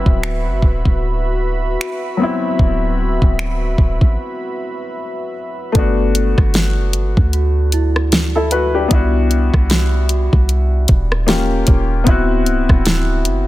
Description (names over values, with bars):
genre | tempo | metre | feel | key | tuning
contemporary R&B | 76 BPM | 4/4 | swing 58% on 16ths | G major | A4 = 440 Hz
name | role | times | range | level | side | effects
warm baby grand piano | accompaniment | 0.0-13.5 s | F#3 to E5 | -20 LUFS | left 3 dB | none
warm analog pad | sustained chords | 0.0-5.7 s | F#4 to B5 | -24 LUFS | right 1 dB | chorus, sidechain pumping
warm 808-style bass | bass | 0.0-13.5 s | C1 to D2 | -17 LUFS | equal | none
smooth R&B drum kit | drums | 0.1-13.5 s | finger snaps, hi-hat, kick drum, rim click, snare drum | -15 LUFS | equal | soft clipping on snare
celesta | texture | 5.8-13.5 s | E4 to B4 | -28 LUFS | right 7 dB | tape echo
room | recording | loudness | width
little or no reverb | dense, heavily limited modern master | -13 LUFS | side -16 dB against mid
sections
0.0-5.8 A section; 5.8-13.5 B section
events
break 4.2-5.8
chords
0.0 D13; 5.8 Gmaj7; 8.9 Cmaj9#11; 11.3 Eb9; 12.1 D13